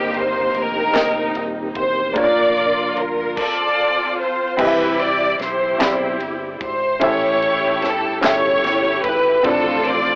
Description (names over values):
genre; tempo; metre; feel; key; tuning
slow gospel; 49 BPM (dotted quarters); 6/8; straight; C major from 4.6 s; A4 = 441 Hz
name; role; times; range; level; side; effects
warm studio string section; melody; 0.0-10.2 s; Bb3 to D5; -17 LUFS; equal; none
clear upright piano; accompaniment; 0.0-10.2 s; G2 to B5; -22 LUFS; equal; none
tonewheel organ; sustained chords; 0.0-3.4, 9.4-10.2 s; Eb3 to Bb4; -26 LUFS; equal; slow rotary speaker, chorus vibrato
fingered electric bass; bass; 0.0-10.2 s; Eb1 to C2; -34 LUFS; equal; none
crisp fusion drum kit; drums; 0.1-10.0 s; crash cymbal, kick drum, ride cymbal, snare drum; -28 LUFS; equal; cassette tape
group handclap; percussion; 0.9-1.3, 5.8-8.6 s; none; -22 LUFS; equal; none
room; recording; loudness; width
moderate small room reverb, RT60 0.5 s; home recording on cassette, AM radio sound; -16 LUFS; side -36 dB against mid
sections
0.0-4.6 A section; 4.6-10.2 A section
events
none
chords
0.0 Cm7; 2.2 Bb/F; 3.4 F; 4.6 Cmaj7; 7.0 A7; 9.5 Dm7